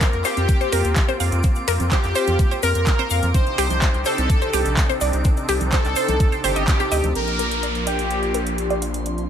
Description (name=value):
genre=progressive house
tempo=126 BPM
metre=4/4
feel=straight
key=Bb major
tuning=A4 = 440 Hz
part: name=soft supersaw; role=melody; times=0.0-8.7 s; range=G4 to C5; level=-25 LUFS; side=left 1 dB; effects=analog chorus, sidechain pumping, ping-pong delay
part: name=filtered supersaw swell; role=sustained chords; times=0.0-9.3 s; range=C3 to A4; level=-28 LUFS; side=equal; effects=sidechain pumping, low-pass filter
part: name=glassy wavetable pluck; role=arpeggios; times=0.0-8.9 s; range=G4 to F5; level=-26 LUFS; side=equal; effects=chorus, sidechain pumping, ping-pong delay
part: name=big-room dance drum kit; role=drums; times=0.0-9.3 s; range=finger snaps, handclaps, hi-hat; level=-28 LUFS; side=right 1 dB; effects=small room reverb
part: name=electronic kick drum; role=drums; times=0.0-6.8 s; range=none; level=-18 LUFS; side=equal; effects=small room reverb
part: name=egg shaker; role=percussion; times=0.0-7.1 s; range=none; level=-35 LUFS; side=left 7 dB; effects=none
part: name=twinkling granular texture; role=texture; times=0.0-9.3 s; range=C6 to D6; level=-36 LUFS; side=right 1 dB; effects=built-in reverb, sidechain pumping
part: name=round analog bass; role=bass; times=0.1-9.3 s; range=G1 to F2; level=-23 LUFS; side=equal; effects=sidechain pumping
part: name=congas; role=percussion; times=0.4-7.1 s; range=none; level=-34 LUFS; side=right 4 dB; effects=overdrive, sidechain pumping on perc, small room reverb
part: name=downlifter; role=sound effects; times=7.2-9.3 s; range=none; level=-29 LUFS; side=equal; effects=none
room=light reverb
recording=none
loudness=-17 LUFS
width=side -9 dB against mid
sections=0.0-7.2 A section; 7.2-9.3 B section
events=band accent 6.7; filter sweep on synth arpeggio sound 7.2-9.3; filter sweep on supersaw synth 7.2-9.3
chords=0.0 Fsus4; 3.3 Cmadd9; 7.2 Bb